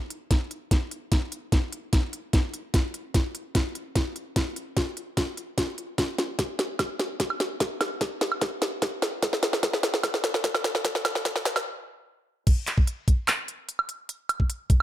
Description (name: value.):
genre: future bass.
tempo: 148 BPM.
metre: 4/4.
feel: half-time.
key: none.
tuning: none.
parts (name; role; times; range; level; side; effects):
trap drum kit; drums; 0.1-14.8 s; crash cymbal, handclaps, hi-hat, snare drum, woodblock; -26 LUFS; equal; none.
electronic kick drum; drums; 0.3-14.8 s; none; -23 LUFS; equal; none.
room: light reverb.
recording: high-pass filter.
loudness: -25 LUFS.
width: side -13 dB against mid.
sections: 0.0-12.5 A section; 12.5-14.8 B section.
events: build-up 0.0-12.5; drum fill 0.0-11.7; filter sweep 0.0-12.5; stop 11.7-12.5; drop 12.5-14.8.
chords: none.